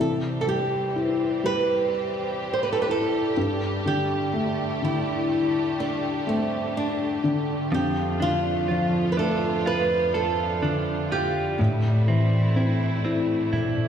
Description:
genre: pop ballad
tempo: 62 BPM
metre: 4/4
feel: straight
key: C major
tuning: A4 = 440 Hz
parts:
  - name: flamenco guitar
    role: melody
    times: 0.0-13.9 s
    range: C4 to C5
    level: -26 LUFS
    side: right 2 dB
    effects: slapback echo, ping-pong delay
  - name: felt-muted upright piano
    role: accompaniment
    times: 0.0-13.9 s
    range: F2 to E4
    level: -25 LUFS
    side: left 2 dB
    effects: slapback echo
  - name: warm studio string section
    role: sustained chords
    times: 0.0-13.9 s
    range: F2 to G4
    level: -32 LUFS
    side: right 1 dB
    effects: none
  - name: direct-recorded clean electric guitar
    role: arpeggios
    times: 7.7-13.9 s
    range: A2 to A4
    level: -28 LUFS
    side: right 3 dB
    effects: spring reverb, slapback echo
  - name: toms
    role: drums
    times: 13.5-13.8 s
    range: none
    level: -27 LUFS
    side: equal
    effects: none
room: light reverb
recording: live gig heard through the venue's PA, recital hall reverb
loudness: -22 LUFS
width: side -8 dB against mid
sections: 0.0-13.9 A section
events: drum fill 13.5-13.9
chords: 0.0 C; 3.4 Gsus2; 7.7 Dm/F; 11.6 Am7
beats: 0.95 1.92 2.88 | 3.85 4.82 5.79 6.75 | 7.72 8.69 9.66 10.62 | 11.59 12.56 13.53

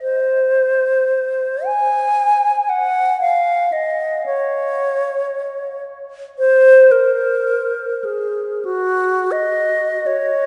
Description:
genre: classical, free, expressive piece for unaccompanied alto flute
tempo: 40-61 BPM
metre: 3/4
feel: rubato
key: Db major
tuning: A4 = 441 Hz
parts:
  - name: bright alto flute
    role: solo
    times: 0.0-10.5 s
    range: Gb4 to Ab5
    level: -17 LUFS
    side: equal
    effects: none
room: wet cathedral reverb, RT60 4.6 s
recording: heard from further back in the room, nothing above 10.5 kHz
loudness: -17 LUFS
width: mono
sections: 0.0-10.5 A section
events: none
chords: none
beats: | 0.01 1.07 2.18 | 3.19 4.25 5.32 | 6.38 7.46 8.66 | 10.03

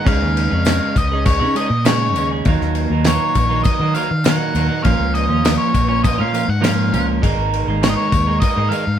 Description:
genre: psychedelic rock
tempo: 100 BPM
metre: 4/4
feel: straight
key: Eb minor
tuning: A4 = 439 Hz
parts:
  - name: octave-fuzz lead guitar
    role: melody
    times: 0.0-9.0 s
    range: Db5 to Gb5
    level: -21 LUFS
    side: left 2 dB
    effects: distortion
  - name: twelve-string electric guitar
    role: riff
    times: 0.0-8.9 s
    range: Eb2 to Ab4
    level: -20 LUFS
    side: right 4 dB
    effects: none
  - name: fingered electric bass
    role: bass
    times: 0.1-9.0 s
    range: Ab1 to Eb3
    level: -20 LUFS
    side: equal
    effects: none
  - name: damped 70s drum kit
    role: drums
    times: 0.1-8.9 s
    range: crash cymbal, kick drum, snare drum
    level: -20 LUFS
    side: left 1 dB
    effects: none
  - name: tambourine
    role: percussion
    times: 0.1-8.9 s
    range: none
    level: -36 LUFS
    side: left 8 dB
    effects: none
room: light reverb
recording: band playing live in one room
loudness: -14 LUFS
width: side -9 dB against mid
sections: 0.0-9.0 A section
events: none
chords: 0.1 Dbsus2; 2.5 Ebm; 4.8 Bbm7; 7.2 Absus2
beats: | 0.06 0.66 1.26 1.85 | 2.45 3.05 3.65 4.24 | 4.84 5.44 6.03 6.63 | 7.23 7.82 8.42

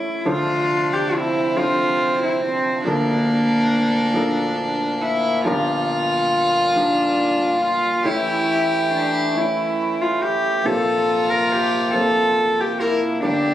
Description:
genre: acoustic folk-pop ballad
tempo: 46 BPM (dotted quarters)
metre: 6/8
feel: straight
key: D minor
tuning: A4 = 441 Hz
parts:
  - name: warm cello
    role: melody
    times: 0.0-13.5 s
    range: Bb3 to Bb4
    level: -20 LUFS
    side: equal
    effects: none
  - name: warm grand piano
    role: accompaniment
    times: 0.0-13.5 s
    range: G1 to A5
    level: -26 LUFS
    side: right 2 dB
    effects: none
  - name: rich violin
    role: second line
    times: 0.3-13.5 s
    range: C4 to Bb4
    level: -22 LUFS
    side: left 1 dB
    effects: none
  - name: pedal harmonium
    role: sustained chords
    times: 0.3-13.5 s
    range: D2 to G4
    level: -26 LUFS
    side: left 1 dB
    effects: none
room: moderate large studio reverb, RT60 1.2 s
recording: recorded on a phone in the room, club ambience, compression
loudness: -17 LUFS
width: side -12 dB against mid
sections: 0.3-13.5 A section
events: none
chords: 0.3 Dm7; 2.9 Bbmaj7/D; 5.5 Gm7; 8.1 A; 10.6 Bbsus2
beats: | 0.27 1.57 | 2.87 4.17 | 5.46 6.76 | 8.05 9.35 | 10.64 11.94 | 13.23

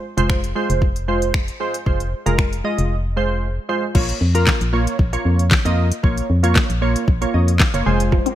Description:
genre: dance-pop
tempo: 115 BPM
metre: 4/4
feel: straight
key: Bb minor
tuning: A4 = 440 Hz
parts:
  - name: glassy digital keys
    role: accompaniment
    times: 0.0-8.3 s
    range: Ab3 to Ab5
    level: -22 LUFS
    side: right 2 dB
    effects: chorus
  - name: organ-like FM bass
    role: bass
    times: 0.2-8.2 s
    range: F1 to F2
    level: -19 LUFS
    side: equal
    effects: sidechain pumping
  - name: smooth R&B drum kit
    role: drums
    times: 0.2-8.3 s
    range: crash cymbal, finger snaps, handclaps, hi-hat, kick drum, snare drum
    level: -19 LUFS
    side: equal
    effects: none
  - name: resonant blip pluck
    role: arpeggios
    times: 8.1-8.3 s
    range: F3 to C4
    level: -22 LUFS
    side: left 2 dB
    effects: phaser, sidechain pumping
  - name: swell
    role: sound effects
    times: 8.3 s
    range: none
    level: -38 LUFS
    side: right 2 dB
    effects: none
room: little or no reverb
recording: none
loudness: -16 LUFS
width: side -12 dB against mid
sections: 0.0-3.9 A section; 3.9-8.3 B section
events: break 2.9-3.9; synth keys fill 7.1-8.1; swell 8.3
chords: 0.0 Fm; 3.9 Bbm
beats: 0.30 0.82 1.34 | 1.86 2.38 2.90 3.43 | 3.95 4.47 4.99 5.51 | 6.04 6.56 7.08 7.60 | 8.12

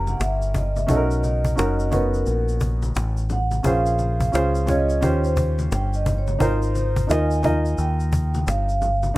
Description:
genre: hip hop, jazz-hop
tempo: 87 BPM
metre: 4/4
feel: swing 63% on 16ths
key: Ab major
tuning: A4 = 435 Hz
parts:
  - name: vibraphone with soft mallets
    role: melody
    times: 0.0-9.2 s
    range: A#4 to Ab5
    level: -26 LUFS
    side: right 2 dB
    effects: none
  - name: warm upright piano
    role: accompaniment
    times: 0.0-9.2 s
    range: B3 to Eb5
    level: -25 LUFS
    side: right 1 dB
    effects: none
  - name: deep dub fingered electric bass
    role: bass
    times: 0.0-9.2 s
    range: Gb1 to Eb2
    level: -22 LUFS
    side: equal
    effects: none
  - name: cajon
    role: drums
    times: 0.1-9.2 s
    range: none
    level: -25 LUFS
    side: equal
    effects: none
  - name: congas and tube shaker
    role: percussion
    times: 0.1-9.1 s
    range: none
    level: -34 LUFS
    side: left 4 dB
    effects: none
room: little or no reverb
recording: rough home demo mix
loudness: -19 LUFS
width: side -18 dB against mid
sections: 0.0-9.2 A section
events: vibraphone solo 0.0-9.2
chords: 0.0 Gb7b9; 0.9 Bmaj9; 3.6 Bbm7; 5.0 Eb13; 6.4 Ab69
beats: 0.20 | 0.89 1.57 2.26 2.95 | 3.64 4.33 5.02 5.71 | 6.40 7.09 7.78 8.47 | 9.16

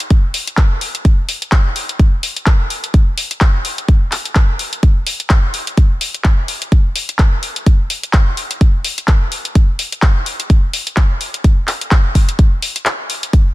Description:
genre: house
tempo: 127 BPM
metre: 4/4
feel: swing 57% on 16ths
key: none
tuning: none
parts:
  - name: house drum kit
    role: drums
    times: 0.0-13.4 s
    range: handclaps, hi-hat, shaker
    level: -20 LUFS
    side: left 1 dB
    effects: studio ambience
  - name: electronic kick drum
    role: drums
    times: 0.1-13.4 s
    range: none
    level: -11 LUFS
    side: equal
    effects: studio ambience
room: little or no reverb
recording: dense, heavily limited modern master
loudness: -12 LUFS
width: side -18 dB against mid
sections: 0.0-13.5 A section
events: break 12.9-13.3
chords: none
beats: | 0.10 0.58 1.05 1.52 | 2.00 2.47 2.94 3.41 | 3.88 4.36 4.83 5.30 | 5.77 6.25 6.72 7.19 | 7.66 8.14 8.61 9.08 | 9.55 10.03 10.50 10.97 | 11.44 11.92 12.39 12.86 | 13.33

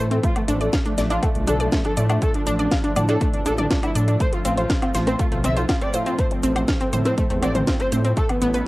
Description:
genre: melodic techno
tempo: 121 BPM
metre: 4/4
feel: straight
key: unclear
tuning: A4 = 438 Hz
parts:
  - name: fat analog lead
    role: melody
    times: 0.0-8.6 s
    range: A3 to E5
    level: -25 LUFS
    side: equal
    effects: chorus, cassette tape, sidechain pumping, tape echo
  - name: dark studio violin section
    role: second line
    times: 0.0-8.6 s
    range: A3 to E5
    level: -35 LUFS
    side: equal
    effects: sidechain pumping, cassette tape, analog delay
  - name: lush unison pad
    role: sustained chords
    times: 0.0-8.7 s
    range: E3 to D4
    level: -30 LUFS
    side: equal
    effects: chorus, sidechain pumping, cassette tape
  - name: analog pluck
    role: arpeggios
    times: 0.0-8.6 s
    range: A3 to F5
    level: -26 LUFS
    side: equal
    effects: chorus, sidechain pumping, cassette tape, analog delay
  - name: swelling detuned saw bass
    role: bass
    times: 0.0-8.6 s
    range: A1 to A2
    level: -23 LUFS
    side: equal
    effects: sidechain pumping
  - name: house drum kit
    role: drums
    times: 0.1-8.6 s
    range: hi-hat, snare drum, toms, woodblock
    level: -27 LUFS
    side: equal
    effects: overdrive
  - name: egg shaker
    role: percussion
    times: 0.1-8.6 s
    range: none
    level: -43 LUFS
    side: right 8 dB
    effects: none
  - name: electronic kick drum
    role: drums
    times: 0.2-8.3 s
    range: none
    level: -23 LUFS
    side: equal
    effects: none
room: light reverb, digital ambience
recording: home recording on cassette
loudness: -18 LUFS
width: side -19 dB against mid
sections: 0.0-8.7 A section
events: none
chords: 0.2 Dm/A; 4.2 F/A; 8.2 Esus4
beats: | 0.23 0.73 1.23 1.72 | 2.22 2.71 3.21 3.71 | 4.20 4.70 5.19 5.69 | 6.19 6.68 7.18 7.67 | 8.17 8.66

